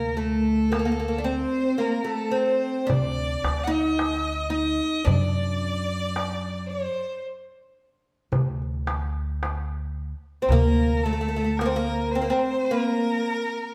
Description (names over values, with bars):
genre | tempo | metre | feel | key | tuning
Arabic maqam ensemble | 110 BPM (eighths) | 10/8 | straight | D maqam hijaz | A4 = 439 Hz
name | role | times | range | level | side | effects
oud | melody | 0.0-13.7 s | A3 to Eb4+25c | -27 LUFS | equal | none
clear violin | second line | 0.0-13.7 s | A4 to F#5 | -32 LUFS | equal | none
upright bass | bass | 0.0-12.3 s | D2 to F#2 | -30 LUFS | equal | none
darbuka | percussion | 0.7-12.3 s | none | -30 LUFS | equal | none
room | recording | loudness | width
wet stone room reverb, RT60 1.4 s | band playing live in one room | -25 LUFS | mono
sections
0.0-13.7 A section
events
none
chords
none